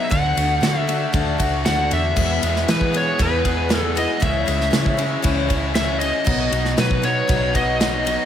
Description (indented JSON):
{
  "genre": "folk rock and heartland rock",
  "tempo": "117 BPM",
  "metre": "4/4",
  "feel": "straight",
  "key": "E major",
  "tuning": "A4 = 441 Hz",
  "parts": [
    { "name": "overdriven slide guitar", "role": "melody", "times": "0.0-8.3 s", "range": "B4 to F#5", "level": "-22 LUFS", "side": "equal", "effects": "analog delay" },
    { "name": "picked steel-string acoustic guitar", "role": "accompaniment", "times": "0.0-8.3 s", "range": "E2 to G#4", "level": "-27 LUFS", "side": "left 6 dB", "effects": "slapback echo" },
    { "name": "dark chamber string section", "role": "sustained chords", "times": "0.0-8.3 s", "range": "B3 to D5", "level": "-32 LUFS", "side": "equal", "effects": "none" },
    { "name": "crunchy overdriven guitar", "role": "riff", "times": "0.0-8.3 s", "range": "E2 to G#4", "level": "-26 LUFS", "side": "right 1 dB", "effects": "slapback echo" },
    { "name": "hollow-body short-scale fingered electric bass", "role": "bass", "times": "0.1-8.2 s", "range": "B1 to E3", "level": "-24 LUFS", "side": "right 1 dB", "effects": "none" },
    { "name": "natural country drum kit", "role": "drums", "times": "0.1-8.2 s", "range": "crash cymbal, kick drum, ride cymbal, snare drum", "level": "-23 LUFS", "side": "equal", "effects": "none" }
  ],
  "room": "moderate scoring stage reverb, RT60 2.1 s",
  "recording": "big arena sound",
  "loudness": "-17 LUFS",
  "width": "side -9 dB against mid",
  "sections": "0.0-8.3 A section",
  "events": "none",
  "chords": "0.1 D; 2.2 E; 4.2 C#m; 6.3 B"
}